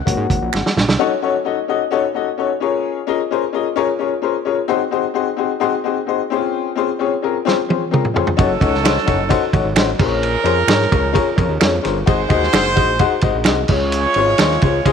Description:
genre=uptempo 1960s-style soul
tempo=130 BPM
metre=4/4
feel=straight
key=Db major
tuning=A4 = 440 Hz
part: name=warm upright piano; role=accompaniment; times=0.0-14.9 s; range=Bb3 to Gb5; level=-18 LUFS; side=left 8 dB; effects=none
part: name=fat analog bass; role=bass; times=0.0-1.0, 8.4-14.9 s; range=Gb1 to Db3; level=-21 LUFS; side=right 3 dB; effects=none
part: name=warm soul drum kit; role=drums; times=0.1-1.0, 7.5-14.9 s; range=crash cymbal, hi-hat, kick drum, ride cymbal, snare drum, toms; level=-18 LUFS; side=right 3 dB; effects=none
part: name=finger snaps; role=percussion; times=0.5-0.6, 8.9-14.5 s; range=none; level=-24 LUFS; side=right 14 dB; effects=none
part: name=warm horn section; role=second line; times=8.4-14.9 s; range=F3 to Db5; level=-20 LUFS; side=right 3 dB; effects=none
room=light reverb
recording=1960s-style stereo with parts hard left and right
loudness=-15 LUFS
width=side -6 dB against mid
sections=1.0-14.9 A section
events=drum fill 0.5-1.0, 7.5-8.4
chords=0.1 Ab7sus4; 1.0 Gbm6; 2.6 Bbm7; 4.7 Ab7; 6.3 Dbmaj7; 8.4 Gbm6; 10.0 Bbm7; 12.1 Ab7; 13.7 Dbmaj7

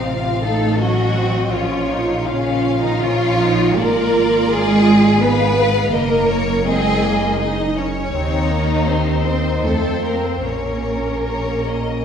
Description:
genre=classical, slow romantic movement for string orchestra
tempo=73-85 BPM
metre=3/4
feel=rubato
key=Bb minor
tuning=A4 = 439 Hz
part: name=rich symphonic violin section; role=melody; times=0.0-12.0 s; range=C5 to F5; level=-26 LUFS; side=left 6 dB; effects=none
part: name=rich studio violin section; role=second line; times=0.0-12.0 s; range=C4 to C5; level=-20 LUFS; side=left 1 dB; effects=none
part: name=warm symphonic viola section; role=accompaniment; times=0.0-12.0 s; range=Ab3 to F4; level=-24 LUFS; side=right 3 dB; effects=none
part: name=clear symphonic double bass section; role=bass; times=0.0-12.0 s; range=Gb1 to F2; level=-22 LUFS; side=equal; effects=none
part: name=rich symphonic cello section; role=bass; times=0.0-12.0 s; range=C3 to C4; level=-22 LUFS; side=right 3 dB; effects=none
room=wet concert hall reverb, RT60 1.8 s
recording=heard from further back in the room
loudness=-15 LUFS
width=side -8 dB against mid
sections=0.0-12.0 A section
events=none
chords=0.0 F7/A; 1.5 Bbm; 3.8 Bb7/Ab; 5.9 Ebm/Gb; 8.2 Eb5; 8.9 Cm/Eb; 9.7 F; 10.5 Bbm

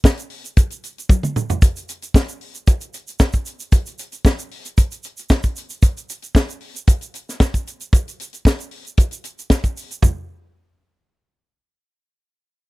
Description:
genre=disco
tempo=114 BPM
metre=4/4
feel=straight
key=none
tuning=none
part: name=tight funk drum kit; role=drums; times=0.0-10.2 s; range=hi-hat, kick drum, snare drum, toms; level=-14 LUFS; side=equal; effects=none
part: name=tube shaker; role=percussion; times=0.1-10.3 s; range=none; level=-34 LUFS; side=right 5 dB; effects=none
room=little or no reverb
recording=dry, close 1970s-style studio recording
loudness=-17 LUFS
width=side -21 dB against mid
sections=0.0-10.0 A section; 10.0-12.1 B section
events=drum fill 1.1-1.6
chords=none

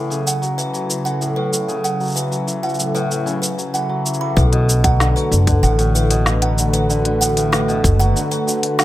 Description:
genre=folktronica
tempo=95 BPM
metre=4/4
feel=straight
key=B minor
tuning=A4 = 442 Hz
part: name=warm analog pad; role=sustained chords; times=0.0-8.8 s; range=C#3 to B4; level=-23 LUFS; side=equal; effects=chorus
part: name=hammered dulcimer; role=arpeggios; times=0.0-8.8 s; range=A2 to A3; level=-22 LUFS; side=left 2 dB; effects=tape echo
part: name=organic electronic drum kit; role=drums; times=0.1-8.8 s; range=hi-hat, shaker, snare drum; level=-22 LUFS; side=equal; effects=none
part: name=music box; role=second line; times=0.3-8.8 s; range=B4 to B5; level=-24 LUFS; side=right 4 dB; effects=tape echo
part: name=upright bass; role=bass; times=4.4-8.1 s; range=F#1 to B1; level=-16 LUFS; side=equal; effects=none
part: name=electronic kick drum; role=drums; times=4.4-8.0 s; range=none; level=-17 LUFS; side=equal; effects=none
room=little or no reverb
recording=none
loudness=-15 LUFS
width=side -14 dB against mid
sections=0.0-4.4 A section; 4.4-8.8 B section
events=none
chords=0.0 A; 4.4 Bm7

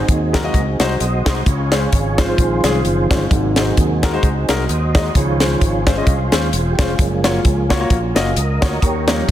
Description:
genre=uptempo gospel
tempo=130 BPM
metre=4/4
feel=swing 56% on 8ths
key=Db major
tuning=A4 = 440 Hz
part: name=warm baby grand piano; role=accompaniment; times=0.0-9.3 s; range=Ab2 to Eb5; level=-22 LUFS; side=left 3 dB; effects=none
part: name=mellow French horn section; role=sustained chords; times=0.0-9.3 s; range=Db3 to Gb4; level=-31 LUFS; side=equal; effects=none
part: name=tonewheel organ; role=sustained chords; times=0.0-9.3 s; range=C3 to Eb5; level=-22 LUFS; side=right 3 dB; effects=slow rotary speaker, chorus vibrato
part: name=fingered electric bass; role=bass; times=0.1-9.3 s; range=Fb1 to Eb2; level=-20 LUFS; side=equal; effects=none
part: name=tight funk drum kit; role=drums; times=0.1-9.3 s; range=hi-hat, kick drum, snare drum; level=-18 LUFS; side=equal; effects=none
room=light reverb, studio reverb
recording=dense, heavily limited modern master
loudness=-14 LUFS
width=side -12 dB against mid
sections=0.0-9.3 A section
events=tonewheel organ solo 0.0-9.3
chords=0.0 Ab7; 1.5 Dbmaj7; 3.3 Ab7; 5.2 Dbmaj7; 7.0 Gbmaj7

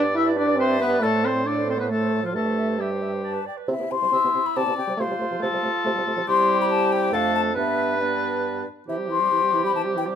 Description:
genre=quick classical-period movement for wind quintet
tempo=138 BPM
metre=3/4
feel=straight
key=C major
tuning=A4 = 440 Hz
part: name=warm oboe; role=second line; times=0.0-10.1 s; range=F4 to E5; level=-27 LUFS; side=left 4 dB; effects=none
part: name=mellow French horn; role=accompaniment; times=0.0-10.2 s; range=E3 to E4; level=-26 LUFS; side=right 1 dB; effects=none
part: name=warm clarinet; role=accompaniment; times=0.0-10.2 s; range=D4 to E5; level=-31 LUFS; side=right 10 dB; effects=none
part: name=dark bassoon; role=bass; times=0.0-10.2 s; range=F2 to C3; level=-28 LUFS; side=right 2 dB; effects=none
part: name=mellow hollow concert flute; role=melody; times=0.2-10.0 s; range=B4 to C6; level=-25 LUFS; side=left 6 dB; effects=none
room=moderate large studio reverb, RT60 1.1 s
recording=minimal, uncompressed stereo recording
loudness=-20 LUFS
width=side -8 dB against mid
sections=0.0-3.7 A section; 3.7-10.2 B section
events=none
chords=0.0 G; 1.0 Amadd11; 2.4 C/G; 3.2 G; 3.7 C; 5.0 F/C; 6.3 C; 7.1 Dm/F; 7.6 G; 8.9 C

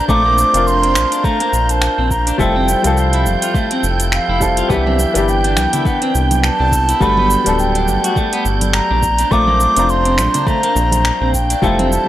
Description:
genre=sunset chillout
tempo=104 BPM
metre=4/4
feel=swing 57% on 16ths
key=unclear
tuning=A4 = 440 Hz
part: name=wooden flute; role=melody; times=0.0-12.1 s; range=E5 to D6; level=-17 LUFS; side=right 1 dB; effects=none
part: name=airy breathy pad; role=sustained chords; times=0.0-12.1 s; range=F3 to Bb5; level=-26 LUFS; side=right 1 dB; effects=chorus
part: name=clean electric guitar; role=arpeggios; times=0.0-11.9 s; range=A3 to F#4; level=-24 LUFS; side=left 1 dB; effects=tape echo
part: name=wind-like tuned noise texture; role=texture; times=0.0-12.1 s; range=G6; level=-26 LUFS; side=right 5 dB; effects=built-in reverb
part: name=warm baby grand piano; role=accompaniment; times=0.1-12.1 s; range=E3 to Bb5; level=-20 LUFS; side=left 2 dB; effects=auto-pan
part: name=round analog bass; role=bass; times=0.1-12.0 s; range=D1 to C2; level=-18 LUFS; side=equal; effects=none
part: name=electronic kick drum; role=drums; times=0.1-11.8 s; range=none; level=-19 LUFS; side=equal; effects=overdrive
part: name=smooth R&B drum kit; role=drums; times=0.1-12.1 s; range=finger snaps, hi-hat, shaker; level=-21 LUFS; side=right 1 dB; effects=overdrive
part: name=congas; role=percussion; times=4.9-11.9 s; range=none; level=-26 LUFS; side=right 3 dB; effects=none
room=little or no reverb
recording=dry, gritty hardware recording, faint mains hum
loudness=-12 LUFS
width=side -13 dB against mid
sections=0.0-12.1 A section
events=none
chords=0.0 Bbmaj9; 2.4 Fmaj9; 4.7 Cmaj9; 7.0 Gmaj9; 9.0 Bbmaj9

